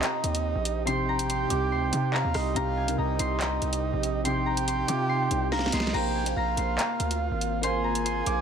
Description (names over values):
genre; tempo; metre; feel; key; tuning
hip hop, drill; 142 BPM; 4/4; half-time; C minor; A4 = 440 Hz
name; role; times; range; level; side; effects
Celtic harp; melody; 0.0-8.4 s; Bb4 to D6; -32 LUFS; left 3 dB; ping-pong delay
breathy flute-like synth lead; second line; 0.0-8.4 s; Eb5 to Ab5; -32 LUFS; right 6 dB; chorus, ping-pong delay
dark grand piano; accompaniment; 0.0-8.4 s; C3 to F5; -32 LUFS; left 2 dB; none
warbly tape-like pad; sustained chords; 0.0-8.4 s; C3 to G4; -35 LUFS; right 4 dB; chorus, built-in reverb
drill drum kit; drums; 0.0-8.4 s; crash cymbal, handclaps, hi-hat, rim click, snare drum; -30 LUFS; equal; none
distorted 808-style bass; bass; 0.2-8.4 s; Ab1 to C3; -30 LUFS; right 1 dB; distortion
room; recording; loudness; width
light reverb; none; -24 LUFS; side -7 dB against mid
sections
0.0-8.4 A section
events
drum fill 5.5-5.9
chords
0.0 Cm; 5.9 Bbsus2